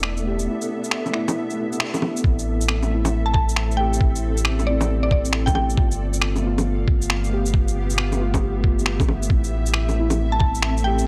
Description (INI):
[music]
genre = future garage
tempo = 136 BPM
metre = 4/4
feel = swing 64% on 16ths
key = A minor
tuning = A4 = 440 Hz
[part]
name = muted felt-like synth keys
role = accompaniment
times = 0.0-11.1 s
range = A3 to G4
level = -30 LUFS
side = equal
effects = chorus, sidechain pumping, analog delay
[part]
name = granular cloud pad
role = sustained chords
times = 0.0-11.1 s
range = B3 to F5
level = -32 LUFS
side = equal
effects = built-in reverb, vintage 12-bit sampler grit, sidechain pumping
[part]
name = warm sub bass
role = bass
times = 0.0-11.1 s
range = E1 to A1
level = -26 LUFS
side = equal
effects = tube saturation, sidechain pumping
[part]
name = electronic finger snaps, shaker and bongos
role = drums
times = 0.0-11.0 s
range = none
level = -28 LUFS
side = equal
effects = small room reverb
[part]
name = flickering grainy texture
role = texture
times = 0.0-2.3 s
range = D4 to D5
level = -42 LUFS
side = equal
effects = none
[part]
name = electronic kick drum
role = drums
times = 2.2-10.5 s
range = none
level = -22 LUFS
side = equal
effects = small room reverb
[part]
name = mallet-like synth pluck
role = melody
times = 3.3-5.6, 10.3-11.1 s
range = D5 to A5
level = -28 LUFS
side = equal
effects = chorus, cassette tape, analog delay
[sound]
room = light reverb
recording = dry, gritty hardware recording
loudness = -21 LUFS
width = mono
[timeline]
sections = 0.0-2.2 A section; 2.2-11.1 B section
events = band accent 1.8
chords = 0.0 Esus4; 2.2 Am; 5.8 G7; 9.3 Am